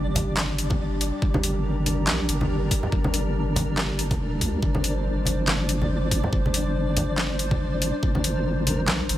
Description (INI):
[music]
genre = deep dubstep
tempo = 141 BPM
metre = 4/4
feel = swing 57% on 16ths, half-time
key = G minor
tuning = A4 = 440 Hz
[part]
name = dark analog pad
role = sustained chords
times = 0.0-9.2 s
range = G3 to C5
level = -30 LUFS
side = equal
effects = chorus
[part]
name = deep soft wobble bass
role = bass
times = 0.0-9.2 s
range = F1 to D2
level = -26 LUFS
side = equal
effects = chorus
[part]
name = flickering grainy texture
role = texture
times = 0.0-9.2 s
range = D4 to D5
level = -33 LUFS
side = equal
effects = built-in reverb
[part]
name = dubstep drum kit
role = drums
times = 0.2-9.2 s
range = handclaps, hi-hat, snare drum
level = -27 LUFS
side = equal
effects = overdrive, small room ambience
[part]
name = congas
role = percussion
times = 0.2-8.8 s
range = none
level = -29 LUFS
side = equal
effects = none
[part]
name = electronic kick drum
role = drums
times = 0.7-8.1 s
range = none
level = -25 LUFS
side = equal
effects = overdrive, small room ambience
[sound]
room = little or no reverb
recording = none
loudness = -22 LUFS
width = side -13 dB against mid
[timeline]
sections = 0.0-9.2 A section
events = none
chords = 0.0 Gm